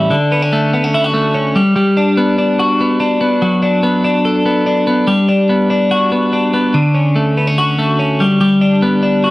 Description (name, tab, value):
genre	indie pop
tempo	145 BPM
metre	4/4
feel	straight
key	D major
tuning	A4 = 440 Hz
part	twelve-string electric guitar	solo	0.0-9.3 s	A2 to A4	-11 LUFS	equal	none
room	wet studio reverb, RT60 0.6 s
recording	worn, warbling old tape, cassette tape, vinyl crackle, warbly pitch drift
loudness	-11 LUFS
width	side -18 dB against mid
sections	0.1-9.3 A section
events	none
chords	0.1 Dmaj7; 1.6 Gmaj7; 3.4 Bm7/F#; 5.1 Gmaj7; 6.7 Dmaj7; 8.2 Gmaj7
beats	| 0.11 0.52 0.94 1.35 | 1.77 2.18 2.60 3.01 | 3.43 3.84 4.25 4.67 | 5.08 5.50 5.91 6.33 | 6.74 7.16 7.57 7.99 | 8.40 8.82 9.23